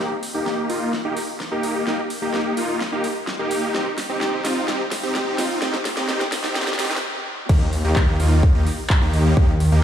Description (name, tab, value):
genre	EDM, festival progressive house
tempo	128 BPM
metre	4/4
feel	straight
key	Eb major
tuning	A4 = 440 Hz
part	supersaw chords	riff	0.0-9.8 s	Bb3 to G4	-23 LUFS	equal	sidechain pumping, low-pass filter, dub echo
part	big-room dance drum kit	drums	0.2-9.7 s	crash cymbal, handclaps, hi-hat, snare drum	-27 LUFS	equal	overdrive, high-pass filter on hats, high-pass filter on snare, high-pass filter on cymbals
part	detuned saw bass	bass	7.5-9.8 s	Eb2	-18 LUFS	equal	sidechain pumping
part	electronic kick drum	drums	7.5-9.5 s	none	-18 LUFS	equal	overdrive
room	light reverb, digital ambience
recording	played on a big sound system in a bare room, stone room reverb, high-pass filter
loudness	-19 LUFS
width	side -10 dB against mid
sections	0.0-7.5 A section; 7.5-9.8 B section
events	build-up 0.0-7.5; drum fill 0.0-7.0; filter sweep on supersaw synth 0.0-7.5; filter sweep 0.0-7.5; stop 7.0-7.5; drop 7.5-9.8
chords	0.0 Eb; 3.7 Cm; 7.5 Eb